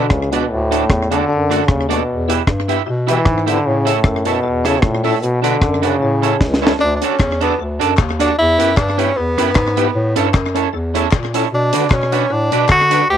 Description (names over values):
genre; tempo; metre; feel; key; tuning
ska; 152 BPM; 4/4; swing 56% on 8ths; D major; A4 = 440 Hz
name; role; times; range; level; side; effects
bright trombone; melody; 0.0-6.6 s; A2 to E3; -18 LUFS; left 1 dB; slapback echo
electric guitar at the edge of break-up; accompaniment; 0.0-13.0 s; B3 to E5; -21 LUFS; right 14 dB; none
tonewheel organ; stabs; 0.0-13.0 s; A3 to B4; -24 LUFS; left 15 dB; overdrive, chorus vibrato, slow rotary speaker
dark bass clarinet; bass; 0.0-13.2 s; C#2 to D3; -20 LUFS; left 1 dB; none
deep reggae drum kit; drums; 0.1-13.0 s; hi-hat, kick drum, rim click, snare drum; -18 LUFS; equal; slapback echo
clear tenor saxophone; melody; 6.8-13.2 s; B3 to G4; -16 LUFS; equal; none
group handclap; percussion; 7.2-12.8 s; none; -29 LUFS; left 10 dB; slapback echo
room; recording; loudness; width
light reverb, studio ambience; 1960s-style stereo with parts hard left and right; -13 LUFS; side -9 dB against mid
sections
0.0-6.8 A section; 6.8-13.2 B section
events
drum fill 6.4-6.8; tenor saxophone solo 6.8-13.2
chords
0.5 D; 2.1 Em; 3.7 A; 5.2 Bm; 6.0 A; 6.8 D; 8.4 Em; 9.9 A; 11.5 Bm